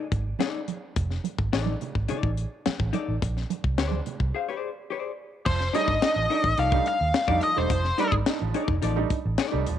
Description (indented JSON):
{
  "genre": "funk",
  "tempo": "107 BPM",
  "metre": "4/4",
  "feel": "straight",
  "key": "F mixolydian",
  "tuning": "A4 = 439 Hz",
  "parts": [
    { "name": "vintage hollow-body jazz guitar", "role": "accompaniment", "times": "0.0-9.6 s", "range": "Eb4 to F5", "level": "-32 LUFS", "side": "left 8 dB", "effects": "none" },
    { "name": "vintage muted fingered electric bass", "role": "bass", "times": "0.1-9.8 s", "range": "Eb1 to F2", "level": "-27 LUFS", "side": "right 2 dB", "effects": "none" },
    { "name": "tight funk drum kit", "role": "drums", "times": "0.1-9.8 s", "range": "crash cymbal, hi-hat, kick drum, snare drum", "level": "-29 LUFS", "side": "left 3 dB", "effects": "vintage 12-bit sampler grit" },
    { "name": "congas", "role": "percussion", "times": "0.1-4.2 s", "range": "none", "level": "-34 LUFS", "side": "right 11 dB", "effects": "none" },
    { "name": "nasal lead guitar with a parked wah", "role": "melody", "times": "5.5-8.1 s", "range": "C5 to F5", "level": "-25 LUFS", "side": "left 1 dB", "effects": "overdrive" },
    { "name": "bright upright piano", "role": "stabs", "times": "5.5-9.8 s", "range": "F3 to Eb4", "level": "-30 LUFS", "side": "right 12 dB", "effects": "none" }
  ],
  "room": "moderate spring reverb, RT60 2.5 s",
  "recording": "1960s-style stereo with parts hard left and right",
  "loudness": "-23 LUFS",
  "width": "side -10 dB against mid",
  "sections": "0.0-5.5 A section; 5.5-9.8 B section",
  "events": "break 4.3-5.5",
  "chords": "0.0 F6 (rootless); 3.2 Bb9 (rootless); 5.5 F13"
}